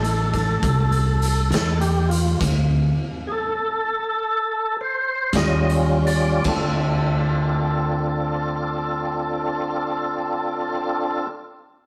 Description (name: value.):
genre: slow blues.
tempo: 51-68 BPM (dotted quarters).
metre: 12/8.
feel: straight.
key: D minor.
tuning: A4 = 441 Hz.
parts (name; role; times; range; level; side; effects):
tonewheel organ; sustained chords; 0.0-11.3 s; G3 to Eb5; -25 LUFS; equal; overdrive, chorus vibrato, slow rotary speaker.
upright bass; bass; 0.0-11.2 s; A1 to E2; -24 LUFS; equal; none.
raw garage drum kit; drums; 0.0-6.6 s; crash cymbal, hi-hat, kick drum, snare drum; -30 LUFS; equal; none.
room: wet stone room reverb, RT60 1.2 s.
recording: rough rehearsal-room recording, warm saturation.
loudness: -22 LUFS.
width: mono.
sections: 0.0-6.5 A section; 6.5-11.1 B section.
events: tonewheel organ solo 0.0-6.5; slowing down 1.2-6.5; stop 2.4-5.3.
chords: 0.0 Dm7 (rootless); 2.4 D5; 5.3 Eb7; 6.5 Dm7.